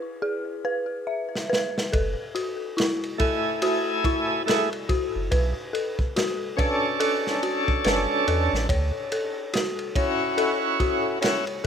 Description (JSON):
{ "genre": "trip hop", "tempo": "71 BPM", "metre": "4/4", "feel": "swing 59% on 16ths", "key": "F# minor", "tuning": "A4 = 440 Hz", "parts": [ { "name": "dark detuned synth bell", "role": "arpeggios", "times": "0.0-11.7 s", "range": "E4 to E5", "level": "-27 LUFS", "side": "left 2 dB", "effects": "chorus, ping-pong delay" }, { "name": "crunchy breakbeat drum kit", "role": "drums", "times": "1.4-11.7 s", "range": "kick drum, ride cymbal, snare drum", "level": "-28 LUFS", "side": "right 1 dB", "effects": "none" }, { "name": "soft dub sub bass", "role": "bass", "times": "1.9-8.9 s", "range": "F#1 to E2", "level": "-26 LUFS", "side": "right 1 dB", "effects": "none" }, { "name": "bright tonewheel organ", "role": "accompaniment", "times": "3.2-11.5 s", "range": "A3 to G#5", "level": "-25 LUFS", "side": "right 1 dB", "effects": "overdrive, slow rotary speaker, tremolo, vintage 12-bit sampler grit, tape echo" } ], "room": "moderate small room reverb, RT60 0.5 s", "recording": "rough home demo mix", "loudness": "-22 LUFS", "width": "side -8 dB against mid", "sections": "0.0-1.9 A section; 1.9-11.7 B section", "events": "break 0.0-1.9; drum fill 1.3-1.9", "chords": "0.0 E; 1.9 F#m7; 5.3 Bm7; 8.7 Dmaj7 (rootless)" }